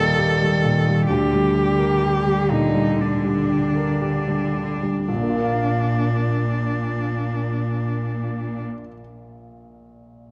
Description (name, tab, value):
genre	cinematic, emotional film score for orchestra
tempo	55-67 BPM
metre	4/4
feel	rubato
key	Bb major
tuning	A4 = 442 Hz
part	rich cello	melody	0.0-8.6 s	D4 to A4	-26 LUFS	equal	none
part	clear baby grand piano	accompaniment	0.0-10.3 s	Bb1 to F5	-26 LUFS	equal	none
part	bright studio cello section	bass	0.0-8.6 s	Bb2 to Eb3	-26 LUFS	equal	none
room	moderate scoring stage reverb, RT60 2.0 s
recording	dark, warm production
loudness	-21 LUFS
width	mono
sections	0.0-5.1 A section; 5.1-9.4 B section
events	slowing down 0.0-5.1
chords	0.0 Eb; 1.1 Gm/D; 5.1 Bb